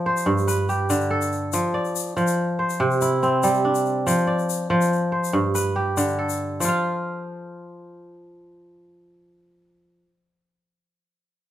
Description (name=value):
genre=west african traditional, West African string and xylophone music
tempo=95 BPM (dotted quarters)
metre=12/8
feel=straight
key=F lydian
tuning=A4 = 440 Hz
part: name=kora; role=arpeggios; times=0.0-10.1 s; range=G2 to F5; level=-20 LUFS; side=equal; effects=none
part: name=egg shaker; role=percussion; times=0.2-6.8 s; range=none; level=-30 LUFS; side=left 8 dB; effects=none
room=moderate large studio reverb, RT60 1.0 s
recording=band playing live in one room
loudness=-20 LUFS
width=side -12 dB against mid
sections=0.0-6.6 A section; 6.6-9.2 B section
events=none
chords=0.3 G; 1.5 F; 2.8 C; 4.1 F5; 5.3 G; 6.6 F